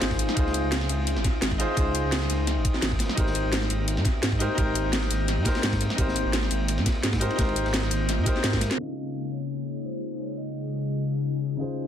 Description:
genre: liquid drum and bass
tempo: 171 BPM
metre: 4/4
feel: swing 54% on 16ths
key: Db lydian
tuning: A4 = 440 Hz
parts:
  - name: clear concert grand piano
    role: accompaniment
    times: 0.0-11.9 s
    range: Db3 to C5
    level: -30 LUFS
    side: left 1 dB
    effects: ping-pong delay
  - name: glassy FM pad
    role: sustained chords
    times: 0.0-11.9 s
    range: Db3 to Ab4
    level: -32 LUFS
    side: left 2 dB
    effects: ensemble chorus, built-in reverb, sidechain pumping
  - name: dark detuned saw bass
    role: bass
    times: 0.0-8.7 s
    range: Ab1 to Ab2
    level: -27 LUFS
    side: equal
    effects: none
  - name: crunchy breakbeat drum kit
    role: drums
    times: 0.0-8.7 s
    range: ride cymbal, snare drum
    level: -35 LUFS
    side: equal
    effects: high-pass filter on cymbals, high-pass filter on snare, high-pass filter on room
  - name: drum and bass drum kit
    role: drums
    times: 0.0-11.8 s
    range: hi-hat, snare drum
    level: -29 LUFS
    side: equal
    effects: low-pass filter on hats, low-pass filter on snare, low-pass filter on room
  - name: electronic kick drum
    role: drums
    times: 0.1-8.6 s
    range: none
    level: -26 LUFS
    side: equal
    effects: none
  - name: vibraphone with medium mallets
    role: melody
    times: 8.4-11.0 s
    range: Bb4 to F5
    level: -42 LUFS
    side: right 1 dB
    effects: dub echo
room: light reverb, small room ambience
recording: dense, heavily limited modern master, low-pass filter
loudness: -23 LUFS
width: side -9 dB against mid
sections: 0.0-8.8 A section; 8.8-11.9 B section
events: drum fill 8.5; band accent 8.7; filter sweep on ambient pad 8.8-11.9; filter sweep 8.8-11.9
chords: 0.0 Dbmaj9; 3.2 Abmaj9; 8.8 Dbadd9

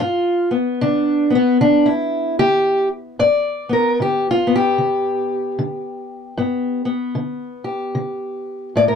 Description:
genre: acoustic country blues, solo or duo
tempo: 76 BPM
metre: 4/4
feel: swing 61% on 8ths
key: G mixolydian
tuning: A4 = 440 Hz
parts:
  - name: fingerpicked steel-string acoustic guitar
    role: solo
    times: 0.0-9.0 s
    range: G2 to D5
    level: -16 LUFS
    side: left 1 dB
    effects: none
room: moderate booth ambience, RT60 0.2 s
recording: dark, warm production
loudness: -16 LUFS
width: side -6 dB against mid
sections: 0.0-9.0 A section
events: steel-string acoustic guitar solo 0.0-9.0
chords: 0.0 G

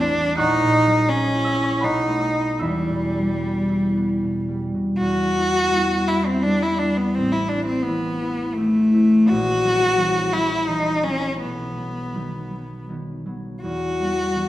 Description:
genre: classical, romantic duo for cello and harp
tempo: 74-89 BPM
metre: 3/4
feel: rubato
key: E minor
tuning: A4 = 439 Hz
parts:
  - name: rich cello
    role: melody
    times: 0.0-14.5 s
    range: G3 to F#4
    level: -20 LUFS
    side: equal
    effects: none
  - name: concert harp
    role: accompaniment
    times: 0.0-14.5 s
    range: E1 to F#6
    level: -23 LUFS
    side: equal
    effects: none
room: wet recital hall reverb, RT60 1.3 s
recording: recorded in a church or concert hall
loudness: -18 LUFS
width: side -14 dB against mid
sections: 0.0-5.0 A section; 5.0-14.5 A section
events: none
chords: 0.4 F#7/A#; 1.8 B7; 2.6 Em; 7.1 Am; 9.3 F#7/A#; 11.4 B; 13.6 Em

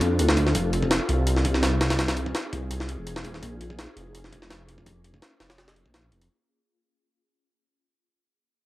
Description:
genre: drum and bass, jungle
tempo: 167 BPM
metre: 4/4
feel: swing 53% on 16ths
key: unclear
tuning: A4 = 440 Hz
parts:
  - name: granular cloud pad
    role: sustained chords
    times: 0.0-6.3 s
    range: Bb3 to A4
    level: -31 LUFS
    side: left 1 dB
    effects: built-in reverb, cassette tape
  - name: detuned saw bass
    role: bass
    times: 0.0-6.3 s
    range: Eb1 to F2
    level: -25 LUFS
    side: equal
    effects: none
  - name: jungle sampler-style drum kit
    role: drums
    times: 0.0-6.3 s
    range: hi-hat, kick drum, snare drum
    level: -26 LUFS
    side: equal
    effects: high-pass filter on kick, high-pass filter on hats, high-pass filter on snare, high-pass filter on room
room: light reverb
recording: home recording on cassette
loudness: -22 LUFS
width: side -17 dB against mid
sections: 0.0-6.3 A section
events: fade-out 0.0-6.3; filter sweep on detuned saw bass 0.0-6.3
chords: 0.0 Dm7; 0.6 Fm7; 3.4 Bbm7

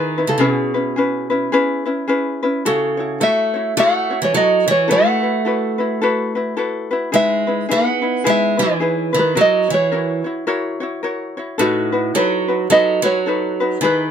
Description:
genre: Hawaiian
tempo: 107 BPM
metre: 4/4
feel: swing 60% on 8ths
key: unclear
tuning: A4 = 440 Hz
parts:
  - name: ukulele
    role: melody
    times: 0.0-14.1 s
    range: F#4 to F#5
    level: -18 LUFS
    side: right 1 dB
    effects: none
  - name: picked steel-string acoustic guitar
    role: second line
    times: 0.0-14.1 s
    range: A2 to B3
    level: -21 LUFS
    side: right 4 dB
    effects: none
  - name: ukulele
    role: accompaniment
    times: 0.0-14.1 s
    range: C#4 to C#5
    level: -20 LUFS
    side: left 3 dB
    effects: none
room: light reverb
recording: close, detailed microphones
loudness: -15 LUFS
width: side -8 dB against mid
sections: 0.0-14.1 A section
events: none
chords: 0.4 C#m7; 2.6 F#m7; 4.9 B7sus4; 7.1 Emaj7; 9.4 F#7; 11.6 B7

